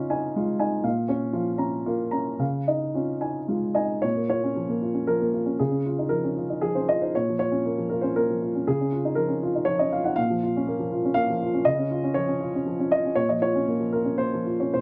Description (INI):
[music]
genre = neoclassical minimalist piano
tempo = 106-124 BPM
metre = 3/4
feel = rubato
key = Bb minor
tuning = A4 = 440 Hz
[part]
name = dark upright piano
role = solo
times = 0.0-14.8 s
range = Bb2 to Bb5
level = -25 LUFS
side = equal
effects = none
[sound]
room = little or no reverb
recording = close, detailed microphones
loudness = -25 LUFS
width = mono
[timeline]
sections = 0.0-4.0 A section; 4.0-14.8 B section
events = none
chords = 0.0 Dbadd9; 0.8 Bbm; 2.4 Dbadd9; 4.0 Bbm; 5.6 Dbadd9; 7.1 Bbm; 8.7 Dbadd9; 10.2 Bbm; 11.6 Dbadd9; 13.2 Bbm